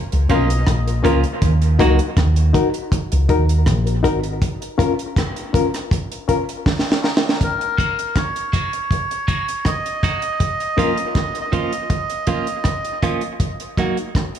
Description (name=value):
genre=dub reggae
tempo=80 BPM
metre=4/4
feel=straight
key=Eb minor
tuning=A4 = 440 Hz
part: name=deep dub fingered electric bass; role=bass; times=0.1-4.4 s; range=Ab1 to Eb2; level=-16 LUFS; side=equal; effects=none
part: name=deep reggae drum kit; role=drums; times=0.1-14.4 s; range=hi-hat, kick drum, rim click, snare drum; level=-20 LUFS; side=equal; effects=none
part: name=melodica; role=melody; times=0.3-0.7, 7.4-13.0 s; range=Bb4 to Eb5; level=-24 LUFS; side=right 1 dB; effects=dub echo
part: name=clean electric guitar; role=accompaniment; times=0.3-2.0, 7.8-14.0 s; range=F3 to Gb4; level=-24 LUFS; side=right 5 dB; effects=high-pass filter, dub echo
part: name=reed electric piano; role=stabs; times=0.3-10.9 s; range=Db4 to Bb4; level=-23 LUFS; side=left 6 dB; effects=fast tremolo, high-pass filter, dub echo
room=light reverb, small room ambience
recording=none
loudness=-17 LUFS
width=side -9 dB against mid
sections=0.0-7.4 A section; 7.4-14.4 B section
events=break 0.0-7.4; filter sweep 4.4-10.4; drum fill 6.7-7.4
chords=0.0 Bbm; 1.4 Ebm; 4.4 Bbm; 7.4 Ebm; 10.4 Bbm; 13.4 Ebm